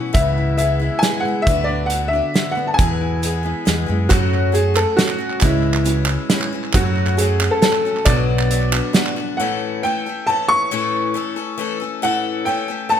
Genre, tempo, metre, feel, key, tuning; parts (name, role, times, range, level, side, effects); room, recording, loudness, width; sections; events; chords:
indie folk with a building arrangement; 136 BPM; 3/4; straight; A mixolydian from 9.4 s; A4 = 440 Hz
clear upright piano; melody; 0.0-13.0 s; E4 to C#6; -20 LUFS; equal
fingerpicked steel-string acoustic guitar; accompaniment; 0.0-4.1 s; B2 to B4; -28 LUFS; equal
picked steel-string acoustic guitar; accompaniment; 0.0-13.0 s; E2 to A4; -24 LUFS; left 8 dB
fingered electric bass; bass; 0.1-8.8 s; B1 to F#2; -20 LUFS; equal
loose indie drum kit; drums; 0.1-9.0 s; hi-hat, kick drum, snare drum; -19 LUFS; right 1 dB
felt-muted upright piano; accompaniment; 4.1-9.4 s; F#1 to D5; -27 LUFS; right 7 dB
group handclap; percussion; 4.1-9.2 s; -26 LUFS; right 6 dB
light reverb; -16 LUFS; side -9 dB against mid
0.0-4.1 A section; 4.1-9.4 B section; 9.4-13.0 C section
0.1 C#m7; 1.5 Bm/D; 2.8 E; 4.1 F#m; 5.4 C#m; 6.7 F#m; 8.1 Bm; 9.4 A